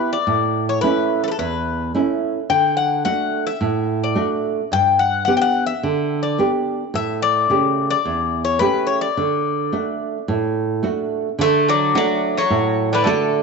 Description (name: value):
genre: greek folk, Greek bouzouki band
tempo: 108 BPM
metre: 4/4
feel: straight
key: D major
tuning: A4 = 440 Hz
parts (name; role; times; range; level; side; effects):
- Greek bouzouki; melody; 0.0-13.4 s; A4 to G5; -20 LUFS; left 8 dB; none
- nylon-string guitar; accompaniment; 0.0-13.4 s; E2 to G4; -20 LUFS; right 4 dB; none
- Greek bouzouki; second line; 11.4-13.4 s; D3 to A3; -20 LUFS; right 2 dB; none
room: moderate echo chamber reverb, RT60 2.0 s, small room ambience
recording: nothing above 7.8 kHz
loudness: -17 LUFS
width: side -4 dB against mid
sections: 0.0-11.4 A section; 11.4-13.4 A section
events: none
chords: 0.3 A; 2.5 D; 4.7 G; 6.9 A7; 9.2 D